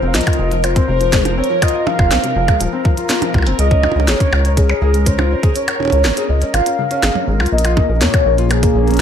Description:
IDM; 122 BPM; 4/4; straight; A4 = 440 Hz
warbly nostalgic lead; melody; 0.0-9.0 s; Ab4 to F5; -19 LUFS; equal; lush chorus, ping-pong delay
felt-muted upright piano; arpeggios; 0.0-9.0 s; C3 to Db5; -22 LUFS; left 5 dB; tape echo
deep acid bass; bass; 0.0-9.0 s; Eb1 to F2; -16 LUFS; equal
bubbling stepped-filter texture; texture; 0.0-9.0 s; Ab4 to Bb4; -28 LUFS; right 1 dB; chorus, built-in reverb
glitchy drum kit; drums; 0.1-9.0 s; hi-hat, percussion blips, snare drum; -20 LUFS; right 1 dB
electronic kick drum; drums; 0.3-8.7 s; -15 LUFS; equal
warbly tape-like pad; sustained chords; 8.1-9.0 s; Bb2 to Ab4; -20 LUFS; right 2 dB; chorus, built-in reverb
light reverb; lossy compression artefacts; -12 LUFS; side -8 dB against mid
0.0-9.0 A section
break 5.6-7.5
0.0 F7(no3); 3.6 Db5; 7.5 Bbm7

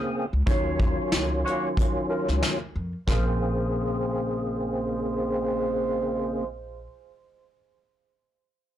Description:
hip hop, boom-bap hip-hop; 92 BPM; 4/4; swing 56% on 16ths; Bb minor; A4 = 438 Hz
percussive tonewheel organ; accompaniment; 0.0-6.4 s; Db3 to Ab4; -27 LUFS; left 2 dB; overdrive, chorus vibrato, slow rotary speaker, high-pass filter, low-pass filter
upright bass; bass; 0.3-6.9 s; Bb1 to F2; -30 LUFS; equal
dark upright piano; melody; 0.5-5.0 s; Bb4 to Db5; -36 LUFS; right 6 dB; high-pass filter, low-pass filter, plate reverb, digital delay
soft brush drum kit; drums; 0.5-3.2 s; hi-hat, kick drum, snare drum; -26 LUFS; equal
mellow horn section; stabs; 1.5-6.4 s; Ab3 to Db5; -32 LUFS; right 5 dB; high-pass filter, low-pass filter, digital delay
light reverb; blown-out, overdriven recording, overdrive; -24 LUFS; side -11 dB against mid
0.0-3.1 A section; 3.1-5.7 B section
filter sweep 0.0-3.1
0.5 Ebm9; 3.1 Bbm9

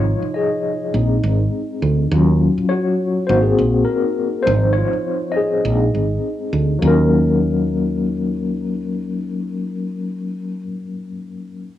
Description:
lush 1970s-style soul; 102 BPM; 4/4; swing 54% on 16ths; Eb dorian; A4 = 439 Hz
mellow tine electric piano; accompaniment; 0.0-11.7 s; C3 to Eb5; -19 LUFS; left 2 dB; medium tremolo, cassette tape
woody fretless electric bass; bass; 0.0-10.6 s; Ab1 to Eb2; -17 LUFS; right 1 dB
light reverb, digital ambience; home recording on cassette, small room ambience; -16 LUFS; side -12 dB against mid
0.0-6.8 A section; 6.8-9.2 B section
tine electric piano solo 0.0-6.8
0.0 Dbmaj9/Ab; 0.9 Bb9sus4; 2.1 Ebm7; 3.3 Ab9; 4.5 Dbmaj9/Ab; 5.6 Bb9sus4; 6.8 Ebm7

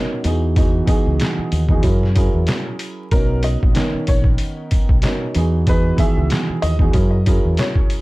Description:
hip hop, boom-bap hip-hop; 94 BPM; 4/4; swing 56% on 16ths; B major; A4 = 443 Hz
dark concert grand piano; accompaniment; 0.0-8.0 s; B2 to A#4; -22 LUFS; right 2 dB; high-pass filter, low-pass filter
deep dub fingered electric bass; bass; 0.2-7.6 s; A#1 to F#2; -18 LUFS; equal
trip hop sampler-style drum kit; drums; 0.2-8.0 s; handclaps, hi-hat, kick drum, snare drum; -18 LUFS; equal
sleigh bells; percussion; 0.2-8.0 s; -41 LUFS; left 3 dB
dark upright piano; melody; 3.1-7.9 s; A#4 to E5; -26 LUFS; left 1 dB; high-pass filter, low-pass filter, ping-pong delay
little or no reverb; dark, warm production, vinyl crackle; -15 LUFS; side -20 dB against mid
0.0-8.0 A section
break 0.0-3.1
0.2 Emaj9; 1.8 F#7; 3.1 Bmaj7; 5.4 Emaj9; 6.9 F#7

